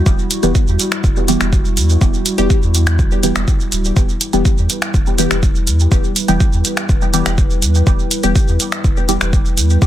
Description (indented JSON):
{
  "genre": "dub techno",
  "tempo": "123 BPM",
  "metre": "4/4",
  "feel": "straight",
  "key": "E minor",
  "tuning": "A4 = 438 Hz",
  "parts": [
    { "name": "dark analog pad", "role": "sustained chords", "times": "0.0-9.9 s", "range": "G3 to B4", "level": "-23 LUFS", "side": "equal", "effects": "chorus, sidechain pumping" },
    { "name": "warm sub bass", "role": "bass", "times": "0.1-9.9 s", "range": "D1 to E2", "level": "-16 LUFS", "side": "equal", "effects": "sidechain pumping" },
    { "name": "deep house drum kit", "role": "drums", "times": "0.1-9.9 s", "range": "finger snaps, hi-hat, shaker", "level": "-20 LUFS", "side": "equal", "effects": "soft clipping on snare" },
    { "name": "electronic kick drum", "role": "drums", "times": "0.1-9.9 s", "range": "none", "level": "-14 LUFS", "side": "equal", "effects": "none" },
    { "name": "filtered dub chord stab", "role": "stabs", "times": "0.4-9.3 s", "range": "E3 to G4", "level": "-19 LUFS", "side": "equal", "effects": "chorus, phaser, dub echo" }
  ],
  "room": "digital ambience",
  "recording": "dense, heavily limited modern master",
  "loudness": "-12 LUFS",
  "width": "side -12 dB against mid",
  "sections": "0.0-9.9 A section",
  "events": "none",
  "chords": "0.0 Em"
}